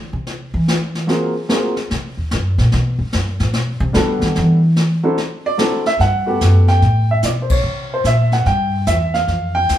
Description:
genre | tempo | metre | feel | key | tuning
jazz piano trio | 146 BPM | 4/4 | swing 66% on 8ths | G major | A4 = 440 Hz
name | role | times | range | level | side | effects
upright bass | bass | 0.0-9.8 s | D2 to E3 | -16 LUFS | equal | none
jazz brush drum kit | drums | 0.3-9.8 s | brushed snare drum, hi-hat, kick drum, ride cymbal, snare drum | -23 LUFS | left 2 dB | none
warm upright piano | melody | 1.1-9.8 s | Gb3 to G5 | -18 LUFS | right 1 dB | none
room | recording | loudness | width
moderate large studio reverb, RT60 0.9 s | band playing live in one room | -14 LUFS | side -11 dB against mid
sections
0.0-6.0 A section; 6.0-9.8 B section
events
upright bass solo 0.0-6.0; band accent 7.4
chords
0.0 Cadd9; 1.1 Ab13; 2.7 Gmaj9; 5.2 D9; 6.0 Gmaj9; 7.6 C7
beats
0.27 0.68 | 1.09 1.50 1.91 2.31 | 2.72 3.13 3.54 3.95 | 4.36 4.77 5.18 5.59 | 6.00 6.41 6.82 7.23 | 7.64 8.05 8.46 8.87 | 9.29 9.70

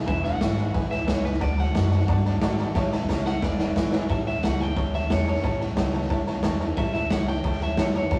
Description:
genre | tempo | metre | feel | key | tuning
rockabilly | 179 BPM | 4/4 | straight | A mixolydian | A4 = 441 Hz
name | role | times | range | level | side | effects
picked steel-string acoustic guitar | accompaniment | 0.0-8.2 s | E2 to F#4 | -35 LUFS | equal | none
raw garage drum kit | drums | 0.0-8.2 s | hi-hat, kick drum, snare drum | -28 LUFS | equal | none
electric guitar at the edge of break-up | melody | 0.1-8.2 s | B4 to G5 | -34 LUFS | equal | none
warm upright piano | accompaniment | 0.1-8.2 s | B4 to A5 | -36 LUFS | equal | none
upright bass | bass | 0.1-8.2 s | E1 to G2 | -30 LUFS | equal | none
room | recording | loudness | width
moderate small room reverb, RT60 0.5 s | rough rehearsal-room recording, warm saturation, small room ambience | -24 LUFS | mono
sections
0.0-4.1 A section; 4.1-8.2 B section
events
clean electric guitar solo 0.0-4.1; drum fill 2.8-4.1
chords
0.0 E7; 1.4 D7; 2.8 A7; 3.4 E7; 4.1 A7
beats
| 0.08 0.41 0.75 1.08 | 1.42 1.75 2.09 2.42 | 2.76 3.09 3.42 3.76 | 4.09 4.43 4.76 5.10 | 5.43 5.77 6.11 6.44 | 6.78 7.11 7.45 7.78 | 8.12

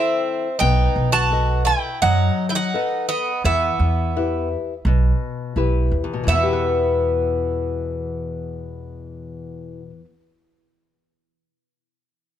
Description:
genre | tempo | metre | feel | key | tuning
greek folk, Greek bouzouki band | 85 BPM | 4/4 | straight | E harmonic minor | A4 = 440 Hz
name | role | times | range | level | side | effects
Greek bouzouki | melody | 0.0-10.0 s | D#5 to A5 | -22 LUFS | right 2 dB | none
Greek bouzouki | second line | 0.0-10.1 s | B3 to F#4 | -27 LUFS | right 4 dB | none
nylon-string guitar | accompaniment | 0.0-10.3 s | E2 to D#5 | -24 LUFS | left 5 dB | none
upright bass | bass | 0.6-10.0 s | B1 to F#2 | -21 LUFS | right 1 dB | none
room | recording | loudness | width
little or no reverb | close, detailed microphones | -18 LUFS | side -10 dB against mid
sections
0.0-6.3 A section; 6.3-9.1 B section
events
none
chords
0.0 Am; 0.6 B7; 3.4 Em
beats
| 0.61 1.32 2.03 2.74 | 3.45 4.16 4.86 5.57 | 6.28 6.98 7.69 8.40

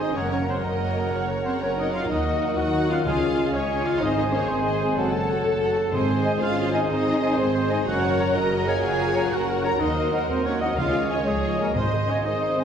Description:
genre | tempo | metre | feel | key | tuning
cinematic | 124 BPM (dotted quarters) | 12/8 | straight | unclear | A4 = 441 Hz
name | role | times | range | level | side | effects
warm symphonic violin section | melody | 0.0-12.6 s | Ab4 to Bb5 | -34 LUFS | left 5 dB | none
silver concert flute | second line | 0.0-12.6 s | Gb5 to Bb5 | -33 LUFS | left 3 dB | none
warm clarinet | second line | 0.0-12.6 s | Db5 to Eb5 | -33 LUFS | right 1 dB | none
warm oboe | second line | 0.0-12.6 s | Ab4 to Bb5 | -32 LUFS | right 1 dB | none
warm symphonic violin section | second line | 0.0-12.6 s | Gb4 to Eb5 | -32 LUFS | left 2 dB | none
rich symphonic viola section | accompaniment | 0.0-12.6 s | Eb4 to Bb5 | -32 LUFS | right 2 dB | none
dark trombone section | sustained chords | 0.0-12.6 s | Db3 to Ab3 | -34 LUFS | right 2 dB | none
mellow French horn section | sustained chords | 0.0-12.6 s | F3 to Gb4 | -31 LUFS | left 2 dB | none
concert harp | arpeggios | 0.0-12.6 s | Gb2 to Eb5 | -34 LUFS | left 4 dB | none
warm trumpet section | stabs | 0.0-12.6 s | Ab4 to Eb5 | -30 LUFS | right 1 dB | none
dark symphonic cello section | bass | 0.0-12.6 s | Ab3 to Bb4 | -28 LUFS | right 1 dB | none
rich symphonic double bass section | bass | 0.0-12.6 s | Gb1 to Eb2 | -31 LUFS | right 2 dB | none
timpani | percussion | 3.1-6.4, 10.8-12.2 s | Ab2 to Db3 | -31 LUFS | equal | none
room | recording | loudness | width
wet recital hall reverb, RT60 1.4 s | heard from further back in the room | -21 LUFS | side -8 dB against mid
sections
0.0-12.6 A section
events
none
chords
0.2 Gb; 2.1 Ebm; 3.1 Dbadd9; 4.0 Ab; 5.0 Gbm; 5.9 Ab; 7.9 Gb; 9.8 Ebm; 10.8 Dbadd9; 11.8 Ab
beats
| 0.16 0.64 1.13 1.61 | 2.09 2.57 3.05 3.53 | 4.01 4.49 4.97 5.46 | 5.93 6.42 6.90 7.38 | 7.87 8.36 8.84 9.32 | 9.81 10.30 10.78 11.27 | 11.76 12.25

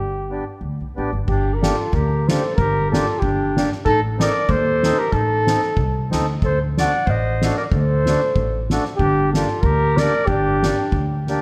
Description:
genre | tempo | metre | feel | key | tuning
alpine folk, alpine dance band | 93 BPM | 2/4 | swing 54% on 8ths | G minor | A4 = 438 Hz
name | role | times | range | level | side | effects
mellow flugelhorn | melody | 0.0-11.3 s | G4 to F#5 | -24 LUFS | equal | tape echo
upright bass | bass | 0.0-11.3 s | G1 to Eb2 | -25 LUFS | equal | none
mellow accordion | accompaniment | 0.3-11.4 s | A3 to A4 | -29 LUFS | equal | none
clear clarinet | second line | 1.3-11.3 s | D4 to D5 | -29 LUFS | equal | none
soft-mallet drum kit | drums | 1.3-11.4 s | crash cymbal, kick drum, snare drum | -26 LUFS | equal | none
room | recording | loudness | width
light reverb | none | -19 LUFS | mono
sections
0.0-1.3 A section; 1.3-11.4 B section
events
drum fill 11.3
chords
0.0 G; 1.3 Gm; 3.9 Adim; 6.4 D7; 9.0 Gm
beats
0.61 | 1.27 1.93 | 2.57 3.22 | 3.86 4.49 | 5.13 5.78 | 6.43 7.08 | 7.72 8.36 | 9.00 9.63 | 10.28 10.93

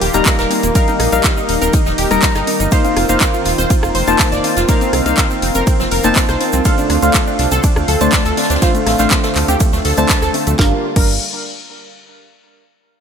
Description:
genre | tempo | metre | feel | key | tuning
progressive house | 122 BPM | 4/4 | straight | G minor | A4 = 439 Hz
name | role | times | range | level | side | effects
lush unison pad | sustained chords | 0.0-10.8 s | D3 to F4 | -22 LUFS | right 1 dB | chorus, sidechain pumping
wide unison pluck | arpeggios | 0.0-11.1 s | A3 to D5 | -21 LUFS | right 1 dB | sidechain pumping, digital delay
deep mellow chord stab | stabs | 0.0-11.1 s | G3 to Bb5 | -18 LUFS | left 2 dB | chorus, sidechain pumping, digital delay
round analog bass | bass | 0.0-11.2 s | Eb1 to D2 | -19 LUFS | right 1 dB | sidechain pumping
house drum kit | drums | 0.0-11.1 s | crash cymbal, handclaps, hi-hat, ride cymbal, rim click, snare drum | -20 LUFS | equal | overdrive
jazz brush drum kit | drums | 0.0-10.5 s | hi-hat, snare drum | -25 LUFS | left 2 dB | none
congas | percussion | 0.0-10.6 s | none | -30 LUFS | left 2 dB | none
egg shaker | percussion | 0.1-10.6 s | none | -28 LUFS | right 2 dB | none
electronic kick drum | drums | 0.3-11.1 s | none | -15 LUFS | equal | overdrive
room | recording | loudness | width
light reverb, digital ambience | none | -12 LUFS | side -7 dB against mid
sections
0.0-10.6 A section; 10.6-12.6 B section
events
drop 0.0-10.6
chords
0.0 Ebadd9; 2.7 F7sus4; 6.7 Dm7; 10.6 Gm7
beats
0.26 | 0.75 1.24 1.74 2.23 | 2.72 3.21 3.70 4.20 | 4.69 5.18 5.67 6.16 | 6.65 7.15 7.64 8.13 | 8.62 9.11 9.61 10.10 | 10.59 11.08

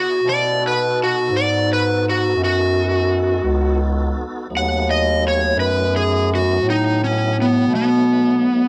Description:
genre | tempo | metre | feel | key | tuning
blues | 56 BPM (dotted quarters) | 12/8 | straight | B mixolydian | A4 = 439 Hz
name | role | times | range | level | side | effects
overdriven slide guitar | melody | 0.0-8.7 s | B3 to F#5 | -20 LUFS | equal | none
tonewheel organ | sustained chords | 0.0-8.7 s | F#3 to D5 | -30 LUFS | equal | slow rotary speaker, overdrive, chorus vibrato
warm bass clarinet | bass | 0.2-8.4 s | C#2 to B2 | -23 LUFS | equal | none
room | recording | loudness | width
moderate studio reverb, RT60 0.8 s | band playing live in one room | -18 LUFS | mono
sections
0.0-8.7 A section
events
electric slide guitar solo 0.0-8.7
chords
0.3 B7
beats
| 0.25 1.31 2.38 3.44 | 4.50 5.56 6.62 7.69

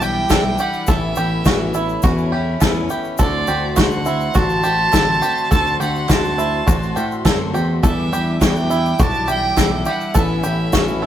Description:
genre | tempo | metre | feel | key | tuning
indie folk with a building arrangement | 104 BPM | 4/4 | straight | unclear | A4 = 440 Hz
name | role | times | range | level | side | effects
rich fiddle | melody | 0.0-11.1 s | D5 to A5 | -22 LUFS | right 2 dB | none
picked plugged-in twelve-string acoustic guitar | accompaniment | 0.0-11.1 s | E2 to F#4 | -24 LUFS | left 2 dB | none
dark studio string section | sustained chords | 0.0-11.1 s | F#4 to D6 | -31 LUFS | left 3 dB | none
bluegrass banjo | arpeggios | 0.0-11.1 s | E4 to A4 | -24 LUFS | right 4 dB | none
picked electric bass | bass | 0.0-11.1 s | A1 to A2 | -23 LUFS | equal | none
egg shaker | percussion | 0.0-10.9 s | none | -34 LUFS | left 8 dB | none
soft-mallet drum kit | drums | 0.3-10.9 s | kick drum, snare drum | -17 LUFS | equal | none
group handclap | percussion | 0.3-10.9 s | none | -34 LUFS | right 4 dB | none
room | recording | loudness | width
moderate stone room reverb, RT60 1.1 s | rough rehearsal-room recording | -15 LUFS | side -11 dB against mid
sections
0.0-11.1 A section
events
none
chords
0.0 Em7; 0.9 Aadd9; 3.2 D7; 7.8 Em7; 10.2 Aadd9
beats
0.30 | 0.88 1.46 2.04 2.62 | 3.20 3.78 4.36 4.94 | 5.52 6.10 6.68 7.25 | 7.83 8.41 8.99 9.57 | 10.15 10.73

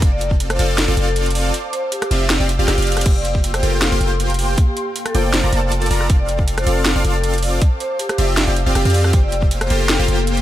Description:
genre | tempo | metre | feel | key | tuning
future bass | 158 BPM | 4/4 | half-time | F major | A4 = 444 Hz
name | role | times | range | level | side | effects
ethereal airy pad | sustained chords | 0.0-10.4 s | Bb3 to E6 | -29 LUFS | left 1 dB | ensemble chorus, built-in reverb, sidechain pumping
supersaw chords | riff | 0.0-10.4 s | Bb3 to Bb5 | -22 LUFS | equal | sidechain pumping
long sustained 808-style bass | bass | 0.0-10.4 s | F1 to F2 | -19 LUFS | equal | tube saturation, sidechain pumping
electronic kick drum | drums | 0.0-0.4, 3.1-9.5 s | none | -15 LUFS | equal | none
trap drum kit | drums | 0.0-10.4 s | crash cymbal, hi-hat, rim click, snare drum | -22 LUFS | right 1 dB | none
vibraphone with medium mallets | melody | 0.1-10.2 s | G4 to D5 | -25 LUFS | left 2 dB | sidechain pumping, tape echo
room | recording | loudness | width
little or no reverb | none | -15 LUFS | side -13 dB against mid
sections
0.0-10.4 A section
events
kick drops out 1.5-3.1; drum fill 2.9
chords
0.0 F6; 1.5 Dm11; 3.1 C7sus4/F; 4.6 Gm9; 6.1 F6; 7.6 Dm11; 9.1 C7sus4/F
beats
| 0.02 0.40 0.78 1.16 | 1.54 1.92 2.30 2.68 | 3.06 3.44 3.82 4.20 | 4.58 4.96 5.34 5.72 | 6.10 6.48 6.86 7.24 | 7.62 8.00 8.38 8.76 | 9.13 9.51 9.89 10.27

